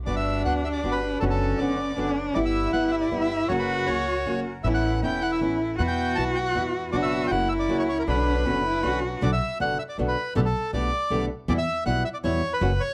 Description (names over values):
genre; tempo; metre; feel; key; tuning
tango; 158 BPM; 3/4; rubato; B minor; A4 = 440 Hz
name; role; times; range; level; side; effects
upright bass; bass; 0.0-12.8 s; E1 to E2; -32 LUFS; equal; none
bandoneon; melody; 0.1-12.9 s; A4 to A5; -30 LUFS; equal; none
warm cello; second line; 0.1-9.2 s; C#4 to F#4; -29 LUFS; equal; none
flamenco guitar; accompaniment; 0.1-12.7 s; B2 to G4; -31 LUFS; equal; none
bandoneon; stabs; 0.1-9.2 s; D3 to C#5; -39 LUFS; equal; none
room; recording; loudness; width
studio reverb; dry, close 1970s-style studio recording; -25 LUFS; mono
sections
0.0-9.2 A section; 9.2-12.9 A section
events
none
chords
0.1 Gmaj7; 1.2 Bmadd9/F#; 2.4 Em/G; 3.5 F#; 4.6 Aadd9; 5.8 Esus2; 6.9 Bm/F#; 7.3 F#; 8.1 Bmadd9; 9.2 Bm; 10.4 Gadd9/B; 11.5 Em